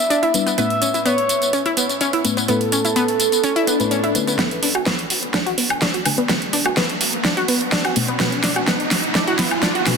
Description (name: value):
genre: progressive house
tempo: 126 BPM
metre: 4/4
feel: straight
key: unclear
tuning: A4 = 440 Hz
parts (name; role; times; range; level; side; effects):
- expressive portamento lead; melody; 0.0-4.3 s; A4 to E5; -22 LUFS; right 2 dB; chorus, ping-pong delay
- deep mellow chord stab; stabs; 0.0-10.0 s; A2 to B4; -25 LUFS; left 4 dB; chorus, sidechain pumping, ping-pong delay
- big-room dance drum kit; drums; 0.0-10.0 s; hi-hat, snare drum, tambourine, woodblock; -20 LUFS; right 1 dB; sidechain pumping on hats, sidechain pumping on perc
- analog pluck; arpeggios; 0.1-9.8 s; B3 to F#4; -22 LUFS; equal; chorus, sidechain pumping, ping-pong delay
- swell and riser; sound effects; 3.6-10.0 s; none; -27 LUFS; equal; none
- electronic kick drum; drums; 4.4-9.7 s; none; -28 LUFS; right 1 dB; high-pass filter on kick, high-pass filter on room
room: wet huge ambient reverb, RT60 4.3 s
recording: dense, heavily limited modern master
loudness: -16 LUFS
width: side -5 dB against mid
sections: 0.0-4.4 A section; 4.4-10.0 B section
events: filter sweep on synth stab 0.0-4.4, 4.4-10.0; swell 3.6-4.4; build-up 4.4-10.0; drum fill 4.4-10.0; filter sweep on synth pluck 4.4-10.0; riser 4.6-10.0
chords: 0.0 Em7; 0.6 Aadd9; 4.4 Bm7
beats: 0.10 | 0.58 1.06 1.53 2.01 | 2.48 2.96 3.44 3.91 | 4.39 4.87 5.34 5.82 | 6.29 6.77 7.25 7.72 | 8.20 8.68 9.15 9.63